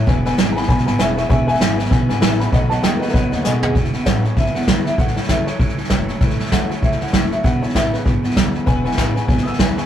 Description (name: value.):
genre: rockabilly.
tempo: 195 BPM.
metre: 4/4.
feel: swing 59% on 8ths.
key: E major.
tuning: A4 = 440 Hz.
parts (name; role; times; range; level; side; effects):
dark upright piano; melody; 0.0-9.9 s; B3 to E6; -24 LUFS; equal; none.
honky-tonk upright piano; accompaniment; 0.0-3.7, 8.7-9.9 s; B4 to G#5; -26 LUFS; left 3 dB; none.
picked steel-string acoustic guitar; accompaniment; 0.0-9.9 s; E2 to F#4; -29 LUFS; left 3 dB; none.
electric guitar through a small old amp; riff; 0.0-9.9 s; E2 to G#3; -24 LUFS; right 1 dB; none.
upright bass; bass; 0.1-9.8 s; E1 to F#2; -23 LUFS; equal; none.
vintage brush drum kit; drums; 0.1-9.8 s; hi-hat, kick drum, snare drum, toms; -17 LUFS; equal; none.
room: moderate small room ambience, RT60 0.5 s.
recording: rough rehearsal-room recording, tube saturation.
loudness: -15 LUFS.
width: side -10 dB against mid.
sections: 0.0-3.8 A section; 3.8-9.9 B section.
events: drum fill 3.4-3.8.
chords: 0.1 E; 2.5 B7; 3.8 E; 5.0 A; 7.4 E.